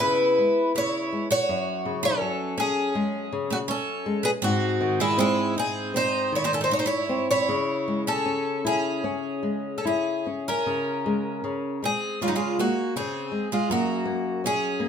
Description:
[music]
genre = fado-style ballad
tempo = 70-84 BPM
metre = 4/4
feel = rubato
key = C# minor, Db major from 10.7 s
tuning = A4 = 440 Hz
[part]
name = picked twelve-string acoustic guitar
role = melody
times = 0.0-14.9 s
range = Eb4 to C#5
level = -26 LUFS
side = left 1 dB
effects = none
[part]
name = picked twelve-string acoustic guitar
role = second line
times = 0.0-14.9 s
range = Gb3 to F#4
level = -29 LUFS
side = right 5 dB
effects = none
[part]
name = flamenco guitar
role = accompaniment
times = 0.0-14.9 s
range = F#2 to E4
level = -28 LUFS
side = left 3 dB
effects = none
[sound]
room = wet studio reverb, RT60 0.6 s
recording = minimal, uncompressed stereo recording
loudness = -23 LUFS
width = side -7 dB against mid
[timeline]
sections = 0.0-10.7 A section; 10.7-14.9 B section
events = none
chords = 0.0 C#m7; 1.5 F#sus2; 4.4 G#; 7.5 C#m; 10.7 Db5; 13.7 Gbadd9

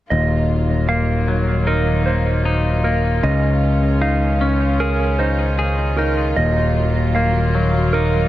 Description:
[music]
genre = rock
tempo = 77 BPM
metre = 4/4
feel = straight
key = Eb dorian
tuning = A4 = 439 Hz
[part]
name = rich chamber string section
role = sustained chords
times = 0.1-8.3 s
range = Eb3 to F4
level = -25 LUFS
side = equal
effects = none
[part]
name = mellow electric guitar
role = arpeggios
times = 0.1-8.3 s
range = Bb4 to F5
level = -24 LUFS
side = right 5 dB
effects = tremolo, digital delay
[part]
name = semi-hollow electric guitar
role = arpeggios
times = 0.1-8.3 s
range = Eb2 to Ab4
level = -21 LUFS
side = left 3 dB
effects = digital delay
[part]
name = modern bright picked electric bass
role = bass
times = 0.1-8.3 s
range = Eb1 to Db2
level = -18 LUFS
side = equal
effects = none
[sound]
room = light reverb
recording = none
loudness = -15 LUFS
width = side -14 dB against mid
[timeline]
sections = 0.1-8.3 A section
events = none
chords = 0.1 Ebmadd9; 3.2 Dbadd9; 6.4 Ebmadd9

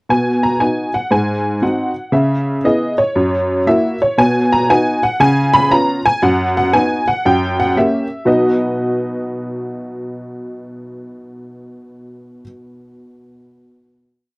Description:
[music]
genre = jazz, stride piano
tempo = 117 BPM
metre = 4/4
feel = swing 66% on 8ths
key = B major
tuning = A4 = 440 Hz
[part]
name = honky-tonk upright piano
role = solo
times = 0.1-14.4 s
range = F#2 to B5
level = -13 LUFS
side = equal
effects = none
[sound]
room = light reverb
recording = dry, close 1970s-style studio recording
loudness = -13 LUFS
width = side -27 dB against mid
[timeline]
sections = 0.1-8.3 A section; 8.3-12.4 final chord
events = none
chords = 0.1 B; 1.1 G#7; 2.1 C#m7; 3.1 F#7; 4.2 B; 5.2 C#7; 6.2 B/F#; 7.2 F#7b9; 8.3 B

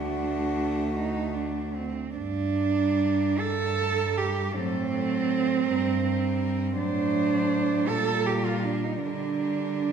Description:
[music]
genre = classical, lyrical piece for cello ensemble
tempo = 48-55 BPM (dotted quarters)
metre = 6/8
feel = rubato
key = G minor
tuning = A4 = 440 Hz
[part]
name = warm cello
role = melody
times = 0.0-9.9 s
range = F#4 to C5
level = -36 LUFS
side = left 5 dB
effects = none
[part]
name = warm cello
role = second line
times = 0.0-9.9 s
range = C4 to A4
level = -26 LUFS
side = right 6 dB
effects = none
[part]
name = warm cello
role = accompaniment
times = 0.0-9.9 s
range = F#3 to A3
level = -34 LUFS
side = left 4 dB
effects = none
[part]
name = dark cello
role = bass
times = 0.0-9.9 s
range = D2 to D3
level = -31 LUFS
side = right 1 dB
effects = none
[sound]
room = moderate scoring stage reverb, RT60 1.9 s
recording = minimal, uncompressed stereo recording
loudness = -24 LUFS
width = side -7 dB against mid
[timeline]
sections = 0.0-2.2 A section; 2.2-9.9 B section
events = none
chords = 0.0 D; 2.2 Gm; 4.6 F#dim/A; 5.7 Gm; 6.8 D7/A; 7.9 Gm/Bb; 9.0 Gm/D

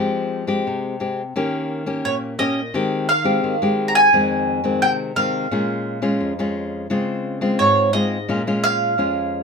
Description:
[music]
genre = samba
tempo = 86 BPM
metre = 4/4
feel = straight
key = F minor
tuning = A4 = 438 Hz
[part]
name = mandolin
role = melody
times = 0.0-9.4 s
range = Db5 to Bb5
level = -18 LUFS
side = right 2 dB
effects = none
[part]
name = nylon-string guitar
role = accompaniment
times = 0.0-9.4 s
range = F2 to G4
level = -21 LUFS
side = left 2 dB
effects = none
[sound]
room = moderate studio ambience, RT60 0.5 s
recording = close, detailed microphones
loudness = -18 LUFS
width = side -5 dB against mid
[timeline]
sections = 0.0-1.4 A section; 1.4-9.4 B section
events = none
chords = 0.0 Fmadd9; 1.4 Eb7; 2.7 Abmaj7/Eb; 4.1 Fm7; 5.5 Bbm7; 6.9 Dbmaj7; 8.3 Bbm7

